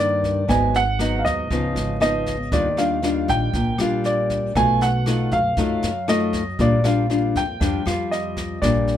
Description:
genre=bossa nova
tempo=118 BPM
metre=4/4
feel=straight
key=Bb major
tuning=A4 = 438 Hz
part: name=warm grand piano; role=melody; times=0.0-9.0 s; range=D5 to Ab5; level=-23 LUFS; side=right 2 dB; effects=none
part: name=nylon-string guitar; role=accompaniment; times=0.0-9.0 s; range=G2 to F4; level=-22 LUFS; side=left 3 dB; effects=none
part: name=upright bass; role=bass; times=0.0-9.0 s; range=Ab1 to G2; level=-26 LUFS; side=right 1 dB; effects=none
part: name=jazz brush drum kit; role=drums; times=0.2-8.9 s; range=kick drum, rim click, snare drum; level=-29 LUFS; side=right 1 dB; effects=none
room=light reverb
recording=none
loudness=-18 LUFS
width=side -10 dB against mid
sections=0.0-9.0 A section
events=none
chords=0.5 Abm7; 1.5 Db9; 2.5 Ebmaj9; 4.6 B7#11; 6.6 Bb6

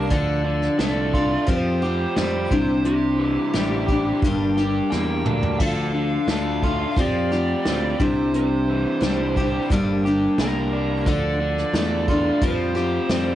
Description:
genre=folk rock and heartland rock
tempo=88 BPM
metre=4/4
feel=straight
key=D minor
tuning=A4 = 440 Hz
part: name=dark smooth lead guitar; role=melody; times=0.0-13.3 s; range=G4 to G5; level=-28 LUFS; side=right 2 dB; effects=overdrive, analog delay
part: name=picked steel-string acoustic guitar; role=accompaniment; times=0.0-13.3 s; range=G2 to A4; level=-24 LUFS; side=left 3 dB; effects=none
part: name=mellow tonewheel organ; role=sustained chords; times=0.0-13.3 s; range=D4 to C5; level=-33 LUFS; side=right 2 dB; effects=none
part: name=crunchy overdriven guitar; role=riff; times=0.0-13.3 s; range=G2 to G4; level=-26 LUFS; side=right 2 dB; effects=none
part: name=modern bright picked electric bass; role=bass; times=0.0-13.3 s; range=G1 to F2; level=-26 LUFS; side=equal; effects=none
part: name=soft brush drum kit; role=drums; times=0.1-13.3 s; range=crash cymbal, hi-hat, kick drum, snare drum, toms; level=-25 LUFS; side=equal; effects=cassette tape
room=light reverb, studio reverb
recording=home recording on cassette, nothing above 10.3 kHz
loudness=-19 LUFS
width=side -13 dB against mid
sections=0.0-13.3 A section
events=drum fill 4.9-5.6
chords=0.1 Dm; 1.5 Fsus2; 2.5 Cadd9; 4.2 Gm; 5.6 Dm; 7.0 Fsus2; 8.0 Cadd9; 9.7 Gm; 11.1 Dm; 12.4 Fsus2

